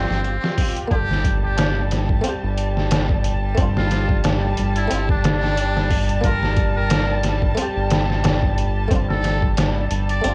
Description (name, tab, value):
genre	trip hop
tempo	90 BPM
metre	4/4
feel	swing 55% on 16ths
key	G dorian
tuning	A4 = 441 Hz
part	trumpet with metal mute	melody	0.0-10.3 s	C4 to D5	-30 LUFS	equal	cassette tape, dub echo
part	buff-stop harpsichord	accompaniment	0.0-10.3 s	A3 to Bb4	-30 LUFS	equal	harmonic tremolo, cassette tape
part	dark studio violin section	sustained chords	0.0-10.3 s	G3 to A5	-29 LUFS	equal	cassette tape
part	round analog bass	bass	0.0-10.3 s	G1	-25 LUFS	equal	none
part	trip hop sampler-style drum kit	drums	0.1-10.3 s	hi-hat, kick drum, snare drum	-24 LUFS	equal	overdrive, cassette tape
part	tabla	percussion	1.6-10.1 s	none	-35 LUFS	equal	none
room	light reverb, small room ambience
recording	home recording on cassette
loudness	-20 LUFS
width	mono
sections	0.0-10.3 A section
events	none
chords	0.0 G13sus4; 0.9 Gm7; 2.2 Fadd9/G; 3.6 G9sus4; 4.9 Dm7/G; 6.2 Gm7; 7.6 Fadd9/G; 8.9 G9sus4